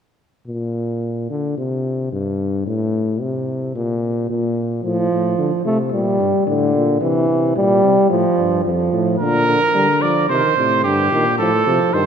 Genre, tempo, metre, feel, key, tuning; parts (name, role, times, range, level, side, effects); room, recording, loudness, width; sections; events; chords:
classical, imitative canzona for brass ensemble; 110 BPM; 4/4; straight; Bb major; A4 = 440 Hz
mellow bass trombone; bass; 0.5-12.1 s; F2 to D3; -21 LUFS; left 1 dB
breathy trombone; accompaniment; 4.8-12.1 s; C3 to A3; -17 LUFS; equal
warm trumpet; second line; 9.2-12.1 s; G4 to D5; -16 LUFS; right 3 dB
wet church reverb, RT60 3.6 s; -16 LUFS; side -7 dB against mid
0.5-12.1 A section
0.5 Bb; 1.6 C5; 2.7 Am; 3.8 N.C.; 4.8 F/A; 5.9 Gm; 7.0 C; 8.1 F; 9.2 Bb; 10.3 Cm; 11.4 F/A